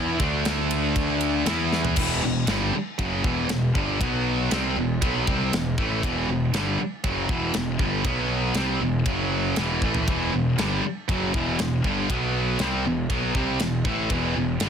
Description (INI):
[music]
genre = heavy metal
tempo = 118 BPM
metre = 4/4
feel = straight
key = E minor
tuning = A4 = 439 Hz
[part]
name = distorted electric guitar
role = riff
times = 0.0-2.0, 10.1-14.7 s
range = E2 to E4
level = -32 LUFS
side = equal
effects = distortion
[part]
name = high-gain distorted guitar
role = riff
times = 0.0-14.7 s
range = E2 to E4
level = -27 LUFS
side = left 11 dB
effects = distortion
[part]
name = tight distorted guitar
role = riff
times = 0.0-14.7 s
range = E2 to E4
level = -27 LUFS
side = right 12 dB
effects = distortion
[part]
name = fuzz picked electric bass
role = bass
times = 0.0-14.7 s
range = E1 to E2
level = -28 LUFS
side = equal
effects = overdrive
[part]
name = tight metal drum kit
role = drums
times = 0.2-14.7 s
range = crash cymbal, kick drum, ride cymbal, snare drum, toms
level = -29 LUFS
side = equal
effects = soft clipping on kick
[sound]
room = little or no reverb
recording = dense, heavily limited modern master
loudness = -22 LUFS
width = side -7 dB against mid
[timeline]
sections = 0.0-2.0 A section; 2.0-14.7 B section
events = drum fill 1.7, 9.8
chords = 0.0 D5; 1.5 E5; 2.0 Em; 4.0 B5; 4.5 Em; 8.1 B5; 8.6 Em; 9.1 F#5; 9.6 Em; 12.1 B5; 12.6 Em